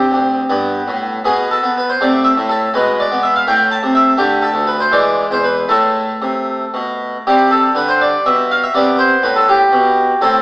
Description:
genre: classical, baroque-style suite movement for harpsichord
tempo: 76-84 BPM (dotted quarters)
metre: 6/8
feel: rubato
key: A minor, C major from 7.3 s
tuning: A4 = 441 Hz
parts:
  - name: harpsichord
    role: solo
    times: 0.0-10.4 s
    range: D2 to A5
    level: -12 LUFS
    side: equal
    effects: none
room: wet scoring stage reverb, RT60 1.6 s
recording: recorded in a church or concert hall, AM radio sound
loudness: -12 LUFS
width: side -23 dB against mid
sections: 0.0-7.3 A section; 7.3-10.4 A section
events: none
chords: 0.5 G; 1.2 N.C.; 2.0 Am/C; 2.7 Bdim7; 3.5 Am; 4.2 D5; 4.9 E7; 5.7 Am; 7.3 C5; 8.7 G

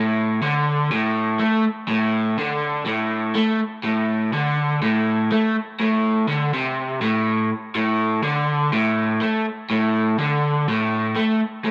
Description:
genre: rock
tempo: 123 BPM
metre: 4/4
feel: straight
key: unclear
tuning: A4 = 440 Hz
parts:
  - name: crunchy overdriven guitar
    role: solo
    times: 0.0-11.7 s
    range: A2 to A3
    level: -21 LUFS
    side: equal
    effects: none
room: light reverb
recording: none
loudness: -21 LUFS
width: mono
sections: 0.0-11.7 A section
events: none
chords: none

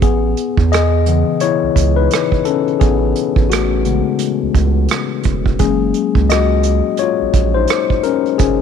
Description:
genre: R&B, neo-soul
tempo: 86 BPM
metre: 4/4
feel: swing 58% on 16ths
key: unclear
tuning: A4 = 440 Hz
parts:
  - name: mellow tine electric piano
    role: accompaniment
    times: 0.0-8.6 s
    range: C#3 to D#5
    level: -15 LUFS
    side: left 10 dB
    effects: medium stereo tremolo
  - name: round analog bass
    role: bass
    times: 0.0-8.6 s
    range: E1 to E2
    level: -16 LUFS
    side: right 2 dB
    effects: none
  - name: unplugged drum kit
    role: drums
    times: 0.0-8.6 s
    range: hi-hat, kick drum, rim click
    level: -18 LUFS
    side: right 5 dB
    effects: none
room: light reverb, studio reverb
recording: 1960s-style stereo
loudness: -13 LUFS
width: side -7 dB against mid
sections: 0.0-8.6 A section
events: tine electric piano solo 0.0-8.6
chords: 0.0 Amaj9; 5.6 F#maj9

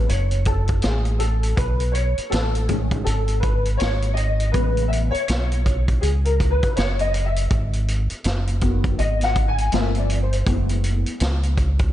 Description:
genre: hip hop, jazz-hop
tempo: 81 BPM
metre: 4/4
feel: swing 60% on 16ths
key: F# dorian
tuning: A4 = 437 Hz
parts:
  - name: dark grand piano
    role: accompaniment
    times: 0.0-11.5 s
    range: C#3 to G#5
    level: -25 LUFS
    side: left 2 dB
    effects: ensemble chorus
  - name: deep dub fingered electric bass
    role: bass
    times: 0.0-11.9 s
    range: F#1 to C#2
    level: -21 LUFS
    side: equal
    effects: none
  - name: vintage drum kit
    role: drums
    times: 0.1-11.9 s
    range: hi-hat, kick drum, snare drum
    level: -24 LUFS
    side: equal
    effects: none
room: small room ambience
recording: nothing above 10.4 kHz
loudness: -18 LUFS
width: side -13 dB against mid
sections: 0.0-11.9 A section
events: grand piano solo 0.0-11.9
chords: 0.0 F#madd9; 1.6 B13; 4.5 Amaj9; 7.5 G#m7; 9.7 Gm11; 10.5 F#m11

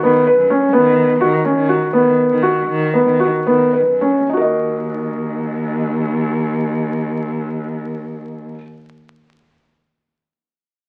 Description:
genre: contemporary instrumental, chamber music in an uneven meter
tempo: 104-129 BPM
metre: 7/4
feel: straight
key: Eb minor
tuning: A4 = 440 Hz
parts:
  - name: felt-muted upright piano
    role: arpeggios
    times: 0.0-8.6 s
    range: B3 to Eb5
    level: -17 LUFS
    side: equal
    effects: none
  - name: rich cello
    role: bass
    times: 0.0-8.5 s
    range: Eb2 to D#3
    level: -23 LUFS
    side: equal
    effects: none
room: wet studio reverb, RT60 0.7 s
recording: very old 78 rpm record, vinyl crackle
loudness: -16 LUFS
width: mono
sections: 0.0-4.3 A section; 4.3-8.3 B section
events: slowing down 0.3-4.3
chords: 0.0 Badd9; 4.3 Ebm

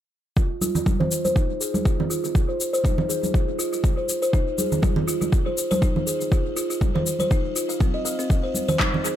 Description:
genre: afro house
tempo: 121 BPM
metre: 4/4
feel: swing 55% on 16ths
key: F minor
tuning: A4 = 440 Hz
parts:
  - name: buzzing kalimba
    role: arpeggios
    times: 0.4-9.1 s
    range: C4 to F5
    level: -25 LUFS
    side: equal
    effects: sidechain pumping, low-pass filter, analog delay
  - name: electronic kick drum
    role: drums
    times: 0.4-8.9 s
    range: none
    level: -21 LUFS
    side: equal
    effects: overdrive
  - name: electronic shaker and handclaps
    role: drums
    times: 0.4-9.2 s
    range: none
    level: -29 LUFS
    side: left 3 dB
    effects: overdrive, analog delay
  - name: congas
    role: percussion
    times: 0.6-9.0 s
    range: none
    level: -26 LUFS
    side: right 2 dB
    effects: analog delay
room: light reverb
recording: echo-heavy mix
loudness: -20 LUFS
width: side -11 dB against mid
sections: 0.4-9.2 A section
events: filter sweep on kalimba 0.4-9.2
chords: none

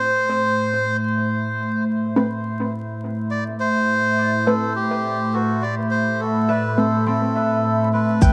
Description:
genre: ambient dub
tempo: 104 BPM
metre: 4/4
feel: swing 53% on 16ths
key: A minor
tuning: A4 = 439 Hz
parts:
  - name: melodica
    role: melody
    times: 0.0-8.3 s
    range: F#4 to D5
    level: -25 LUFS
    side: equal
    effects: cassette tape, tape echo
  - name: warbly tape-like pad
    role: sustained chords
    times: 0.0-8.3 s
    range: A2 to B5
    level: -24 LUFS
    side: equal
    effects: chorus, built-in reverb, phaser, cassette tape
  - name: filtered dub chord stab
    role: stabs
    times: 0.0-6.9 s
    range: A3 to C5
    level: -27 LUFS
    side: equal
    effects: phaser, cassette tape, dub echo
  - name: concert harp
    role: arpeggios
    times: 6.5-8.3 s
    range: C4 to G5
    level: -30 LUFS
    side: equal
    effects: cassette tape, tape echo
  - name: soft dub sub bass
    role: bass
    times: 8.2-8.3 s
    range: A1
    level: -20 LUFS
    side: equal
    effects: none
  - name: electronic kick drum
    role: drums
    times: 8.2-8.3 s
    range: none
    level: -16 LUFS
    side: equal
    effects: none
  - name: shaker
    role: drums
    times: 8.2-8.3 s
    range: none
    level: -44 LUFS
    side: equal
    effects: none
room: moderate spring reverb, RT60 1.4 s, digital ambience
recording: home recording on cassette, vinyl crackle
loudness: -21 LUFS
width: mono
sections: 0.0-8.2 A section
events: filter sweep on ambient pad 0.0-8.2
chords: 0.0 Amadd9

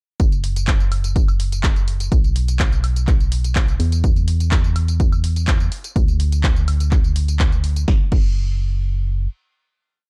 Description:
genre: piano house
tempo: 125 BPM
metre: 4/4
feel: straight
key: unclear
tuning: A4 = 438 Hz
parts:
  - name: organ-like FM bass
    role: bass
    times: 0.2-9.3 s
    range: F#1 to E2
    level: -22 LUFS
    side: equal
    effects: sidechain pumping
  - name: electronic kick drum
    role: drums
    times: 0.2-8.3 s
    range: none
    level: -20 LUFS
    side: equal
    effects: none
  - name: punchy analog drum machine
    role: drums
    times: 0.2-8.3 s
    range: crash cymbal, handclaps, hi-hat, snare drum, tambourine, woodblock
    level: -31 LUFS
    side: equal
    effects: none
room: digital ambience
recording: dark, warm production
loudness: -18 LUFS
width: mono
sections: 0.2-7.9 drop; 7.9-10.1 final note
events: drop 0.2-7.9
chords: none

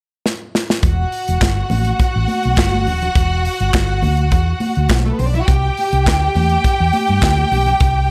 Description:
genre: disco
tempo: 103 BPM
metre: 4/4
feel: straight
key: E minor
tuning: A4 = 439 Hz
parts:
  - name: modern studio drum kit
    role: drums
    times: 0.3-8.0 s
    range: handclaps, hi-hat, kick drum, snare drum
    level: -20 LUFS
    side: equal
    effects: none
  - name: rich studio string section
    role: second line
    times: 0.8-8.1 s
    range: A3 to G5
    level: -22 LUFS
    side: equal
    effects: none
  - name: hollow-body short-scale fingered electric bass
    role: bass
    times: 0.8-8.1 s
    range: D#1 to G2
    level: -19 LUFS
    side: equal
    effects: none
  - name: congas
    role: percussion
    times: 0.8-7.8 s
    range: none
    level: -27 LUFS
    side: equal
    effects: none
room: small room ambience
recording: none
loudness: -16 LUFS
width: mono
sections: 0.8-8.1 A section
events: drum fill 0.2-0.8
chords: 0.0 N.C.; 0.8 Em9; 5.5 C

